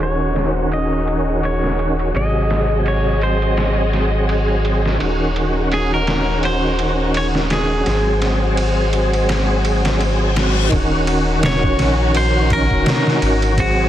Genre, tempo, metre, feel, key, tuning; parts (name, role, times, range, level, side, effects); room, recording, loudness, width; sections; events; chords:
trip hop; 84 BPM; 4/4; swing 57% on 16ths; Eb dorian; A4 = 440 Hz
clean electric guitar; melody; 0.0-13.9 s; Gb4 to Eb5; -23 LUFS; equal; dub echo
overdriven tonewheel organ; accompaniment; 0.0-13.9 s; C3 to Ab4; -21 LUFS; right 1 dB; chorus vibrato, fast rotary speaker, tremolo, vintage 12-bit sampler grit, tape echo
rich symphonic violin section; sustained chords; 0.0-13.9 s; Ab3 to Eb5; -24 LUFS; left 2 dB; vintage 12-bit sampler grit
warm sub bass; bass; 0.0-13.9 s; Eb1 to Bb1; -20 LUFS; equal; tube saturation
trip hop sampler-style drum kit; drums; 0.0-13.8 s; kick drum, ride cymbal, snare drum; -24 LUFS; equal; high-pass filter on cymbals, high-pass filter on snare, high-pass filter on kick, high-pass filter on room
flickering grainy texture; texture; 0.0-10.7 s; Ab4; -30 LUFS; right 1 dB; built-in reverb
reverse cymbal; sound effects; 9.8-10.7 s; -27 LUFS; left 5 dB
light reverb; dense, heavily limited modern master, vinyl crackle, low-pass filter; -15 LUFS; side -12 dB against mid
0.0-10.7 A section; 10.7-13.9 B section
filter sweep on tonewheel organ 0.0-10.7; filter sweep 0.0-10.7; reverse cymbal 9.8-10.7
0.0 Ebm7; 2.1 Ab7; 5.0 Ebm7; 7.9 Ab7; 10.7 Ebm7